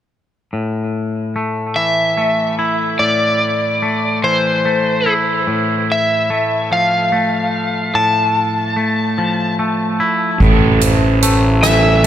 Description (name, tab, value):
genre	post-rock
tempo	49 BPM (dotted quarters)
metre	6/8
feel	straight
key	A minor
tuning	A4 = 440 Hz
part	twangy electric guitar	arpeggios	0.5-12.1 s	A2 to E4	-18 LUFS	left 1 dB	digital delay
part	overdriven slide guitar	melody	1.8-12.1 s	C5 to A5	-16 LUFS	equal	digital delay
part	vibraphone with soft mallets	arpeggios	10.4-12.1 s	A4 to C5	-22 LUFS	right 6 dB	digital delay
part	fuzz fingered electric bass	bass	10.4-12.1 s	A1	-13 LUFS	right 1 dB	overdrive
part	soft-mallet drum kit	drums	10.4-12.1 s	crash cymbal, hi-hat, kick drum, rim click	-15 LUFS	right 1 dB	none
room	light reverb, studio ambience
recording	none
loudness	-13 LUFS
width	side -10 dB against mid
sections	0.5-10.4 A section; 10.4-12.1 A section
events	none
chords	0.5 A5; 5.5 Fmaj7/A; 10.4 Am